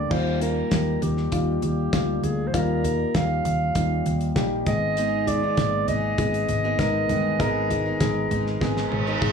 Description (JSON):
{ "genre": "piano-driven pop", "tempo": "99 BPM", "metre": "4/4", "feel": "straight", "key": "unclear", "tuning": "A4 = 442 Hz", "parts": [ { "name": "mellow clarinet", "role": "melody", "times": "0.0-9.2 s", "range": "G4 to F5", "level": "-27 LUFS", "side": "right 1 dB", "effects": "tape echo" }, { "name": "dark upright piano", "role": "accompaniment", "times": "0.0-9.3 s", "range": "Ab2 to Bb4", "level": "-26 LUFS", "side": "left 2 dB", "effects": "none" }, { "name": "hollow-body short-scale fingered electric bass", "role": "bass", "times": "0.0-9.3 s", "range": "G1 to Eb2", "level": "-27 LUFS", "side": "equal", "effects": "none" }, { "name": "damped 70s drum kit", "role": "drums", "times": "0.1-9.3 s", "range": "crash cymbal, hi-hat, kick drum, snare drum, toms", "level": "-28 LUFS", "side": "equal", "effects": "none" }, { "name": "picked steel-string acoustic guitar", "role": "riff", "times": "5.0-9.3 s", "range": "Ab2 to Ab4", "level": "-31 LUFS", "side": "right 6 dB", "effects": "none" }, { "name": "reverse cymbal", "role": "sound effects", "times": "8.8-9.3 s", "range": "none", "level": "-28 LUFS", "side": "right 3 dB", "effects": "none" } ], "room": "moderate studio ambience, RT60 0.5 s", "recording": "studio ambience", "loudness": "-21 LUFS", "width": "side -6 dB against mid", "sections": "0.1-9.3 A section", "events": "drum fill 8.6-9.3; reverse cymbal 8.8-9.3", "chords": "0.1 Ebadd9; 4.7 Abm" }